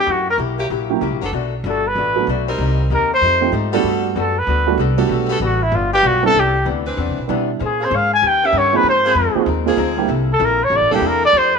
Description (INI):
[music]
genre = jazz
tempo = 192 BPM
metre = 4/4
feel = swing 63% on 8ths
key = G major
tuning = A4 = 440 Hz
[part]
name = warm trumpet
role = melody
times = 0.0-11.6 s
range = E4 to Ab5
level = -16 LUFS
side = equal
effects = none
[part]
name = archtop guitar, miked and amplified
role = accompaniment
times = 0.1-11.6 s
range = G2 to C5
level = -25 LUFS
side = left 13 dB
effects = none
[part]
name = upright bass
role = bass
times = 0.1-11.6 s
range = E1 to B2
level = -22 LUFS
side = equal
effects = none
[part]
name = warm saxophone section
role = sustained chords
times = 0.6-11.3 s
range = Db3 to B4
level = -26 LUFS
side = left 1 dB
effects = none
[part]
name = dark baby grand piano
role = accompaniment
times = 0.9-11.0 s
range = F3 to A4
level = -21 LUFS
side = right 13 dB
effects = none
[sound]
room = moderate echo chamber reverb, RT60 1.7 s, small room ambience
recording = 1960s-style stereo with parts hard left and right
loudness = -14 LUFS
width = side -5 dB against mid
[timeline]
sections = 0.0-6.4 A section; 6.4-11.6 A section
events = trumpet solo 0.0-11.6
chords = 0.1 F#7b9; 1.3 Bm7; 2.6 Cm7; 3.2 F9; 3.8 Gmaj9; 5.7 G7; 6.4 Cmaj9; 7.6 Bbm9; 8.2 Eb7b13; 8.9 Ab69; 10.1 C13